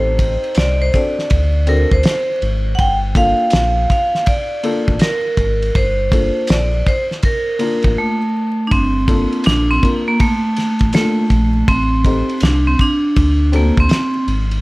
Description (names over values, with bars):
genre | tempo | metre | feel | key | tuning
hip hop, jazz-hop | 81 BPM | 4/4 | swing 65% on 16ths | G minor | A4 = 440 Hz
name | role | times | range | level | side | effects
vibraphone with hard mallets | melody | 0.0-14.3 s | A3 to G5 | -17 LUFS | right 1 dB | analog delay
dark upright piano | accompaniment | 0.0-13.8 s | Bb3 to Bb4 | -23 LUFS | left 3 dB | none
round analog bass | bass | 0.0-14.6 s | G1 to D2 | -17 LUFS | equal | none
cloth-damped thuddy drum kit | drums | 0.2-14.6 s | hi-hat, kick drum, ride cymbal, snare drum | -18 LUFS | equal | none
room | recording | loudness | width
studio reverb | vinyl crackle | -13 LUFS | side -21 dB against mid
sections
0.0-8.7 A section; 8.7-14.6 A section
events
break 8.0-8.7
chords
0.0 Am7b5; 1.3 D7; 2.8 Gm7; 11.7 Am7b5; 13.2 D7